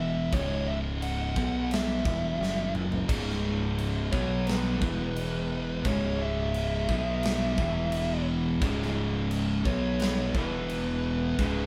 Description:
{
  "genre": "stoner and doom metal",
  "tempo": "87 BPM",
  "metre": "4/4",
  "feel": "straight",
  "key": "C# minor",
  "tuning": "A4 = 440 Hz",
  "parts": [
    { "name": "fuzz lead guitar", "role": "melody", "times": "0.0-11.7 s", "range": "B4 to F#5", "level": "-36 LUFS", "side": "equal", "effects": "distortion" },
    { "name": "thick fuzz guitar", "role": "riff", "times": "0.0-11.7 s", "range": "C#2 to B3", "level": "-36 LUFS", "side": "equal", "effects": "distortion" },
    { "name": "thick fuzz guitar", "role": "riff", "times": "0.0-11.7 s", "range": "C#2 to B3", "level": "-35 LUFS", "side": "equal", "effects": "distortion" },
    { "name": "fingered electric bass", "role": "bass", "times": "0.0-11.7 s", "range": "C#1 to B1", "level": "-37 LUFS", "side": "equal", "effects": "tube saturation" },
    { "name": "big rock drum kit", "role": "drums", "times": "0.3-11.5 s", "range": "crash cymbal, kick drum, snare drum, toms", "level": "-35 LUFS", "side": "equal", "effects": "none" },
    { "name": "crunchy overdriven guitar", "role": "riff", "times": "3.1-11.7 s", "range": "C#2 to B3", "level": "-37 LUFS", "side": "equal", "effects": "none" }
  ],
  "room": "light reverb",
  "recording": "band playing live in one room",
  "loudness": "-29 LUFS",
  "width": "mono",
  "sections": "0.0-11.7 A section",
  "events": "drum fill 2.4-3.1",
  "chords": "0.3 C#5; 1.4 B5; 2.1 E5; 2.4 F#5; 3.1 C#5; 4.1 B5; 4.8 E5; 5.9 C#m; 6.9 B5; 7.6 E5; 8.6 C#5; 9.7 B5; 10.3 E5",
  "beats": "| 0.33 1.02 1.71 2.40 | 3.09 3.79 4.48 5.17 | 5.86 6.55 7.24 7.93 | 8.62 9.31 10.00 10.69 | 11.38"
}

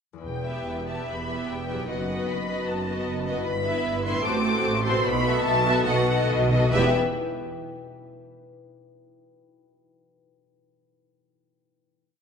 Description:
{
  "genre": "classical, dramatic, fast romantic movement for symphony orchestra",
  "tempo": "133-155 BPM",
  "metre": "4/4",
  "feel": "rubato",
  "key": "E minor",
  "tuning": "A4 = 441 Hz",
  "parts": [
    { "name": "concert harp", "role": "arpeggios", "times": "0.1-7.0 s", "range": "E2 to G5", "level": "-31 LUFS", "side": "left 6 dB", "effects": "none" },
    { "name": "rich symphonic violin section", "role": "melody", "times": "0.2-7.0 s", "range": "D#5 to D6", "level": "-29 LUFS", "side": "left 3 dB", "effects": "none" },
    { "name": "clear symphonic double bass section", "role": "bass", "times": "0.2-7.0 s", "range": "E1 to B1", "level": "-31 LUFS", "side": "right 4 dB", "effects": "none" },
    { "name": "warm symphonic cello section", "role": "bass", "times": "0.2-7.0 s", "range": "E2 to B2", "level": "-31 LUFS", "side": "right 4 dB", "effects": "none" },
    { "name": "timpani", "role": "percussion", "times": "0.2-0.8, 5.9-6.9 s", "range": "E2 to B2", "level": "-30 LUFS", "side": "equal", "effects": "none" },
    { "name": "clear symphonic violin section", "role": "second line", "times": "0.4-7.0 s", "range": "A4 to E5", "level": "-29 LUFS", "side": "equal", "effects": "none" },
    { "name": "clear symphonic viola section", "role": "accompaniment", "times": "0.5-7.0 s", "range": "B3 to G4", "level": "-31 LUFS", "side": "right 2 dB", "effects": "none" }
  ],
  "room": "wet concert hall reverb, RT60 2.1 s",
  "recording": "none",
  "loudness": "-22 LUFS",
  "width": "side -6 dB against mid",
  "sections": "0.2-6.7 A section; 6.7-8.4 final chord",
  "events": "timpani fill 5.9-6.7",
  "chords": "0.2 Em; 1.9 B7/F#; 3.5 Em/G; 4.3 F#dim/A; 5.0 B7sus4; 5.9 B7; 6.7 Em",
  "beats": "| 0.24 0.66 1.07 1.47 | 1.88 2.28 2.68 3.07 | 3.46 3.86 4.25 4.65 | 5.05 5.45 5.86 6.29 | 6.73"
}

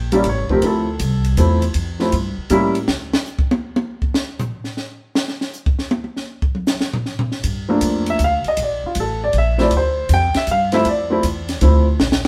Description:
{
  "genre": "jazz piano trio",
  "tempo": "158 BPM",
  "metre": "3/4",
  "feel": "swing 66% on 8ths",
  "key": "D minor",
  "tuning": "A4 = 438 Hz",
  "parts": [
    { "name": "warm baby grand piano", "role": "melody", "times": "0.0-2.7, 7.7-11.8 s", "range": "F3 to G5", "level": "-20 LUFS", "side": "equal", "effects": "none" },
    { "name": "upright bass", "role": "bass", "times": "0.0-3.1, 7.4-12.2 s", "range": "E1 to A2", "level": "-22 LUFS", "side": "equal", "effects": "none" },
    { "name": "compact cocktail drum kit", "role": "drums", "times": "0.1-12.3 s", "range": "hi-hat, kick drum, ride cymbal, snare drum, toms", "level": "-25 LUFS", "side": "equal", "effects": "none" }
  ],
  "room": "moderate studio reverb, RT60 1.0 s",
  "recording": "band playing live in one room",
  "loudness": "-19 LUFS",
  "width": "mono",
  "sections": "0.0-2.9 A section; 2.9-12.3 A section",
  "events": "grand piano solo 0.0-12.3; drum solo 2.9-7.4",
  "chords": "0.0 A7b9; 0.6 Dm7; 2.5 A7b9; 2.9 N.C.; 7.4 Gm7; 9.7 Dm7",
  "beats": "0.25 | 0.63 1.00 1.38 | 1.76 2.14 2.52 | 2.89 3.27 3.65 | 4.03 4.41 4.79 | 5.16 5.54 5.92 | 6.30 6.68 7.06 | 7.44 7.82 8.20 | 8.58 8.96 9.34 | 9.71 10.10 10.47 | 10.85 11.23 11.61 | 11.99"
}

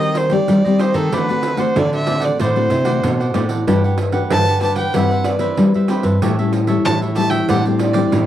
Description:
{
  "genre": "samba and choro",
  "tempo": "94 BPM",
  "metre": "4/4",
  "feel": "straight",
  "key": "unclear",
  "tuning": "A4 = 439 Hz",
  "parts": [
    { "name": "warm violin", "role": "melody", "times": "0.0-8.1 s", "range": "A4 to A5", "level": "-20 LUFS", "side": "right 1 dB", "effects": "none" },
    { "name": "cavaquinho", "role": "accompaniment", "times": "0.0-8.3 s", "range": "D4 to F#5", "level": "-27 LUFS", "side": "right 5 dB", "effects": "none" },
    { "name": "nylon-string guitar", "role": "accompaniment", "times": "0.0-8.3 s", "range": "A2 to B4", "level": "-21 LUFS", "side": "left 6 dB", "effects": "none" },
    { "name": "nylon-string guitar", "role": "bass", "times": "0.0-8.3 s", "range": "G2 to G3", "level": "-18 LUFS", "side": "equal", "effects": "none" },
    { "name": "pandeiro", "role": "percussion", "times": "0.0-8.3 s", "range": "none", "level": "-24 LUFS", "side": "right 6 dB", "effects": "none" }
  ],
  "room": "light reverb",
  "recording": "dry, close 1970s-style studio recording",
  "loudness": "-14 LUFS",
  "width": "side -12 dB against mid",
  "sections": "0.0-8.3 A section",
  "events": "none",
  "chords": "0.0 Cm/Eb; 1.1 D7; 3.7 Gmaj7; 4.9 Cmaj7/G; 6.2 A7; 7.5 D7sus4/A",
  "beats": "0.49 | 1.13 1.76 2.40 3.04 | 3.67 4.31 4.95 5.58 | 6.22 6.85 7.49 8.12"
}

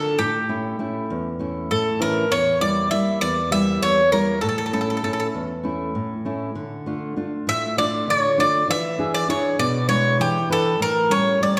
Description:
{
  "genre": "greek folk, Greek bouzouki band",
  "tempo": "198 BPM (eighths)",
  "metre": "7/8",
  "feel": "straight",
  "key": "unclear",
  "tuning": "A4 = 442 Hz",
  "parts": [
    { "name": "Greek bouzouki", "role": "melody", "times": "0.0-11.6 s", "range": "G4 to E5", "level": "-23 LUFS", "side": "equal", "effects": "none" },
    { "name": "nylon-string guitar", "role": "accompaniment", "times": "0.0-11.6 s", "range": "E2 to B4", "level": "-26 LUFS", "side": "equal", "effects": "none" }
  ],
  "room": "wet recital hall reverb, RT60 1.5 s",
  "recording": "recorded in a church or concert hall",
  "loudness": "-22 LUFS",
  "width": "mono",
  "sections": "0.0-11.6 A section",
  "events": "none",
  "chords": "0.2 A; 2.3 Edim; 4.4 A; 6.5 Dm; 8.7 E7; 10.8 A7",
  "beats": "| 0.18 0.48 0.79 1.09 1.39 1.70 2.00 | 2.30 2.61 2.91 3.21 3.52 3.82 4.12 | 4.42 4.73 5.03 5.33 5.64 5.94 6.25 | 6.55 6.85 7.16 7.46 7.76 8.06 8.37 | 8.67 8.97 9.28 9.58 9.88 10.19 10.49 | 10.79 11.10 11.40"
}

